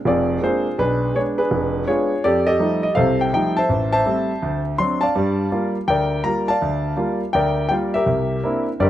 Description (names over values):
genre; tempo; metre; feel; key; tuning
solo jazz; 165 BPM; 4/4; swing 63% on 8ths; unclear; A4 = 440 Hz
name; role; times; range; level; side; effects
warm concert grand piano; solo; 0.1-8.9 s; F1 to C6; -17 LUFS; equal; none
room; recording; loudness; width
light reverb, studio reverb; rough home demo mix; -18 LUFS; side -12 dB against mid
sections
0.0-8.9 A section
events
none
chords
0.0 Bb9; 0.8 Bdim7; 2.2 F9; 3.7 Am7; 4.4 D7; 5.1 Gm7; 8.1 C9